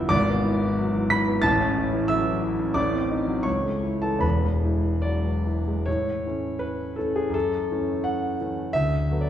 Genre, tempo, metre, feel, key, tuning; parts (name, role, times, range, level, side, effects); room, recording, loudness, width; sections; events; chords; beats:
classical, romantic character piece for solo piano; 71-92 BPM; 2/4; rubato; A major; A4 = 435 Hz
warm concert grand piano; solo; 0.0-9.3 s; E1 to B6; -22 LUFS; equal
wet recital hall reverb, RT60 1.8 s; heard from further back in the room; -22 LUFS; side -10 dB against mid
0.0-5.9 A section; 5.9-9.3 B section
0.1 E7/G#; 1.4 A; 2.8 Adim7; 3.5 A/C#; 4.2 E; 5.9 A; 7.3 F#m7; 8.7 Bm7/D
| 0.12 0.78 | 1.44 2.10 | 2.77 3.46 | 4.23 5.05 | 5.87 6.62 | 7.34 8.05 | 8.74